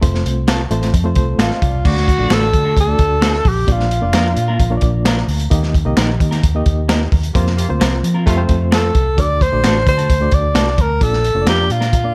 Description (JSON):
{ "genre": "uptempo 1960s-style soul", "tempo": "131 BPM", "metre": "4/4", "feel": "straight", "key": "unclear", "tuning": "A4 = 438 Hz", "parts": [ { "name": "barky reed electric piano", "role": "accompaniment", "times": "0.0-12.1 s", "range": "Bb2 to F5", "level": "-25 LUFS", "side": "equal", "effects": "overdrive, fast tremolo" }, { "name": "vintage muted fingered electric bass", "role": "bass", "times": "0.0-12.1 s", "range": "F1 to F3", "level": "-20 LUFS", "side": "equal", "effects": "none" }, { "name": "crunchy breakbeat drum kit", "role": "drums", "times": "0.0-12.0 s", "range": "crash cymbal, hi-hat, kick drum, snare drum", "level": "-19 LUFS", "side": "equal", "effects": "none" }, { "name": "clean electric guitar", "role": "stabs", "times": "0.5-11.9 s", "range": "F3 to Bb4", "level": "-27 LUFS", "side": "equal", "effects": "tape echo" }, { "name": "finger snaps", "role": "percussion", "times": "0.5-11.6 s", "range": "none", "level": "-31 LUFS", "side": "equal", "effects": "none" }, { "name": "breathy tenor saxophone", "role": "melody", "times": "1.4-5.1, 8.7-12.1 s", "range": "F4 to D5", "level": "-20 LUFS", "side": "equal", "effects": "none" }, { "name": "clear horn section", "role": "second line", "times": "7.3-8.4 s", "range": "C3 to F4", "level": "-30 LUFS", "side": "equal", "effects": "tape echo" } ], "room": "studio reverb", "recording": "dark, warm production", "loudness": "-15 LUFS", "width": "mono", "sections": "0.0-1.9 A section; 1.9-12.1 B section", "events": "band accent 7.3-9.2", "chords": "0.0 F; 1.9 D; 3.7 Bb; 5.5 Eb; 7.3 Fsus4; 8.3 F; 9.2 D; 11.0 Bb" }